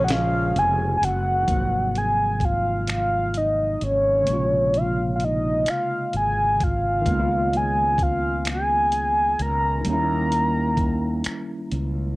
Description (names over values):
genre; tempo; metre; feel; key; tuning
slow six-eight R&B; 43 BPM (dotted quarters); 6/8; straight; unclear; A4 = 440 Hz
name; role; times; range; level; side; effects
mellow horn-like synth lead; melody; 0.0-11.7 s; Db5 to Bb5; -22 LUFS; equal; chorus, cassette tape
tine electric piano; accompaniment; 0.0-12.2 s; C3 to F4; -29 LUFS; equal; overdrive, fast stereo tremolo, cassette tape
warm horn section; stabs; 0.0-1.0 s; F3 to Ab4; -34 LUFS; left 6 dB; cassette tape
fretless electric bass; bass; 0.0-12.2 s; F1 to Eb2; -26 LUFS; equal; none
dusty soul sampler-style drum kit; drums; 0.1-11.9 s; finger snaps, hi-hat, kick drum, snare drum; -27 LUFS; equal; none
room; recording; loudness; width
little or no reverb; home recording on cassette; -20 LUFS; side -21 dB against mid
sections
0.0-1.5 A section; 1.5-12.2 B section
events
break 0.0-1.5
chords
0.0 Bbm7; 1.5 Ab13; 4.3 Bbm9; 7.1 Db13; 9.9 Eb7b9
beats
0.08 | 1.48 2.88 | 4.27 5.67 | 7.06 8.46 | 9.85 11.25